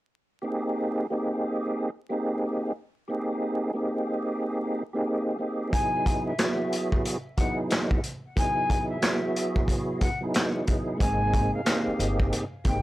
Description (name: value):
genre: hip hop, boom-bap hip-hop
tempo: 91 BPM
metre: 4/4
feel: swing 63% on 16ths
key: unclear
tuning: A4 = 438 Hz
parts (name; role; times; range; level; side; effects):
- tonewheel organ; accompaniment; 0.4-12.8 s; F#3 to Ab4; -28 LUFS; right 1 dB; chorus vibrato, slow rotary speaker, high-pass filter, low-pass filter
- silver concert flute; melody; 5.7-12.8 s; E5 to G#5; -30 LUFS; left 1 dB; high-pass filter, low-pass filter
- vintage drum kit; drums; 5.7-12.8 s; handclaps, hi-hat, kick drum, snare drum; -26 LUFS; equal; none
- upright bass; bass; 11.0-12.8 s; G1 to Ab1; -29 LUFS; equal; tube saturation
room: light reverb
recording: vinyl crackle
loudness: -25 LUFS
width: side -16 dB against mid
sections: 0.5-11.0 A section; 11.0-12.8 B section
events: none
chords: 0.5 Abmaj9; 5.7 Emaj9; 11.0 Abmaj9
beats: | 0.45 1.11 1.77 2.43 | 3.09 3.75 4.41 5.07 | 5.73 6.39 7.05 7.71 | 8.37 9.03 9.68 10.34 | 11.00 11.66 12.32